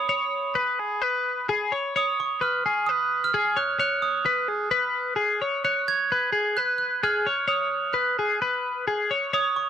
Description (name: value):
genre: rock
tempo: 130 BPM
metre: 4/4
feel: straight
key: unclear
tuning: A4 = 442 Hz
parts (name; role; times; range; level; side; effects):
- glockenspiel with soft plastic mallets; melody; 0.0-9.7 s; C#6 to G#6; -26 LUFS; right 6 dB; digital delay
- twelve-string electric guitar; arpeggios; 0.0-9.7 s; G#4 to C#5; -25 LUFS; left 4 dB; none
room: light reverb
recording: none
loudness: -22 LUFS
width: side -9 dB against mid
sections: 0.0-9.7 A section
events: none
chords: 0.0 C#5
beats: | 0.10 0.56 1.02 1.48 | 1.94 2.40 2.87 3.33 | 3.79 4.25 4.71 5.17 | 5.63 6.09 6.56 7.02 | 7.48 7.94 8.41 8.87 | 9.33